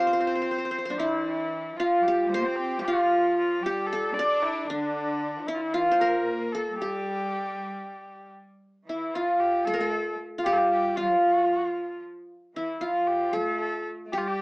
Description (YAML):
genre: turkish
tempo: 228 BPM (eighths)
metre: 7/8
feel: straight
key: G makam huseyni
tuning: A4 = 440 Hz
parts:
  - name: qanun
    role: melody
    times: 0.0-14.4 s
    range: D4 to D5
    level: -24 LUFS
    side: equal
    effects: none
  - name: rich kamancheh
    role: second line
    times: 0.0-14.4 s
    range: D4 to D5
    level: -32 LUFS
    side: left 1 dB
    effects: none
  - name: warm symphonic cello section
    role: second line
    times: 0.0-14.4 s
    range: D3 to D4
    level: -36 LUFS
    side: right 1 dB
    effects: none
room: light reverb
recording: band playing live in one room, small speaker sound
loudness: -24 LUFS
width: side -25 dB against mid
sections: 0.0-8.6 A section; 8.6-14.4 B section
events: none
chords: none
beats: 0.20 0.46 0.72 0.99 | 1.25 1.51 1.78 2.04 2.30 2.57 2.83 | 3.09 3.36 3.62 3.88 4.14 4.41 4.67 | 4.93 5.20 5.46 5.72 5.99 6.25 6.51 | 6.77 7.04 7.30 7.56 7.82 8.09 8.35 | 8.61 8.88 9.14 9.40 9.66 9.93 10.19 | 10.45 10.71 10.98 11.24 11.50 11.77 12.03 | 12.29 12.55 12.82 13.08 13.34 13.61 13.87 | 14.13 14.39